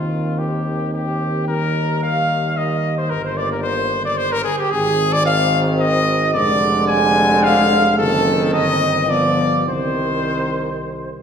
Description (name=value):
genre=classical, brass quintet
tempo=110 BPM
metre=3/4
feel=rubato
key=C minor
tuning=A4 = 441 Hz
part: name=warm trumpet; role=melody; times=0.0-11.1 s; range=F4 to Ab5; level=-20 LUFS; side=left 4 dB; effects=none
part: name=mellow flugelhorn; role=second line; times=0.0-11.1 s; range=F4 to Ab5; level=-22 LUFS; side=right 5 dB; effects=none
part: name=clear trombone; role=accompaniment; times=0.0-11.1 s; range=D3 to F3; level=-25 LUFS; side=right 2 dB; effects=none
part: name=dark French horn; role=accompaniment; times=0.0-11.1 s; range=G3 to C4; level=-25 LUFS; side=left 1 dB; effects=none
part: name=mellow bass trombone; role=bass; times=0.0-11.1 s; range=F1 to Eb2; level=-22 LUFS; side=equal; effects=none
room=wet recital hall reverb, RT60 1.5 s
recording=recorded in a church or concert hall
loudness=-15 LUFS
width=side -7 dB against mid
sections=0.0-11.2 A section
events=none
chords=0.0 Cm/Eb; 1.5 Eb; 3.1 Eb/G; 4.7 Ab; 6.4 Ddim/F; 8.0 F#dim7; 8.5 Cm/G; 9.1 G7; 9.7 Cm